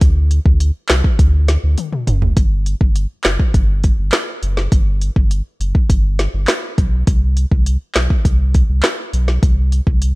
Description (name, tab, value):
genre	dancehall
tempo	102 BPM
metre	4/4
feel	straight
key	G major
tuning	A4 = 440 Hz
part	warm sub bass	bass	0.0-10.1 s	F#1 to D2	-15 LUFS	equal	none
part	deep house drum kit	drums	0.0-10.2 s	handclaps, hi-hat, kick drum, rim click, snare drum, toms	-15 LUFS	equal	vintage 12-bit sampler grit
room	digital ambience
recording	none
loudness	-13 LUFS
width	side -22 dB against mid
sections	0.0-2.4 A section; 2.4-10.2 B section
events	drum fill 1.8-2.4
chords	none